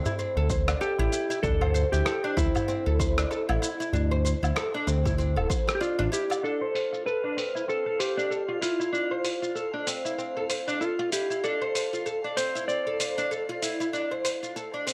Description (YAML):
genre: organic downtempo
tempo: 96 BPM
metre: 4/4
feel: swing 58% on 16ths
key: D dorian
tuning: A4 = 441 Hz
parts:
  - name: oud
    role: arpeggios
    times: 0.0-14.9 s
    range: C4 to D5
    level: -32 LUFS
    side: equal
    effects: low-pass filter, analog delay
  - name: dusty soul sampler-style drum kit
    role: drums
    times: 0.1-14.9 s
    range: hi-hat, rim click, shaker, woodblock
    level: -36 LUFS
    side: equal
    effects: low-pass filter on perc, low-pass filter on snare, low-pass filter on hats, low-pass filter on room
  - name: darbuka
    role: percussion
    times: 0.1-6.4 s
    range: none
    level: -38 LUFS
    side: equal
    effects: none
  - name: smooth gliding synth bass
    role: bass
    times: 0.4-6.1 s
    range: D1 to D2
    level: -28 LUFS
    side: equal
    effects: transformer saturation, sidechain pumping
  - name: electronic kick drum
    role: drums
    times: 0.5-5.6 s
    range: none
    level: -32 LUFS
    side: equal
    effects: none
  - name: clean lap steel guitar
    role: melody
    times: 0.8-14.9 s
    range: E4 to D5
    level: -33 LUFS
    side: equal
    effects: analog delay
  - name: drifting glass-harmonics texture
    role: texture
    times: 6.8-14.9 s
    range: F5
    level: -44 LUFS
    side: equal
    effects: chorus, built-in reverb
room: light reverb, digital ambience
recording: dry, gritty hardware recording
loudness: -28 LUFS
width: mono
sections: 0.0-6.4 A section; 6.4-14.9 B section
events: none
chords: 0.0 C; 6.4 Dm